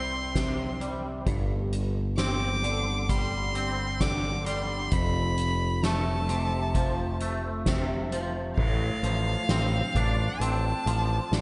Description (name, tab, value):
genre	post-rock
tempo	66 BPM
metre	4/4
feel	straight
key	unclear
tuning	A4 = 440 Hz
part	clear violin	melody	0.0-11.4 s	F5 to D6	-34 LUFS	equal	slapback echo
part	twangy electric guitar	arpeggios	0.0-11.4 s	F2 to D4	-34 LUFS	equal	ensemble chorus, slapback echo
part	growling picked electric bass	bass	0.0-11.4 s	F1 to C2	-32 LUFS	equal	overdrive
part	soft-mallet drum kit	drums	0.4-11.4 s	crash cymbal, hi-hat, kick drum, snare drum	-34 LUFS	equal	none
room	small room reverb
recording	nothing above 10.5 kHz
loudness	-28 LUFS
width	mono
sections	0.0-8.6 A section; 8.6-11.4 B section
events	none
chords	0.0 C5; 1.3 Gsus4; 4.9 F; 8.6 F6/A